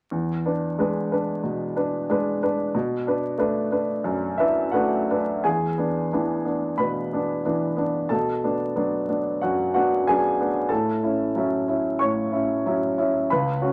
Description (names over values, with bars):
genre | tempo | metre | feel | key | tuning
neoclassical minimalist piano | 92 BPM | 4/4 | rubato | unclear | A4 = 440 Hz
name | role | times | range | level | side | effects
warm grand piano | solo | 0.1-13.7 s | C#2 to C#6 | -24 LUFS | equal | none
room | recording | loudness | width
wet club reverb, RT60 0.5 s | vinyl crackle | -24 LUFS | mono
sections
0.1-5.4 A section; 5.4-13.7 B section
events
none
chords
0.1 E7; 2.7 Bm7; 5.4 E7; 8.1 Bm7; 10.7 F#m7/A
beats
| 0.12 0.79 1.45 2.09 | 2.73 3.38 4.04 4.73 | 5.44 6.10 6.78 7.43 | 8.09 8.75 9.41 10.05 | 10.69 11.34 11.99 12.64 | 13.29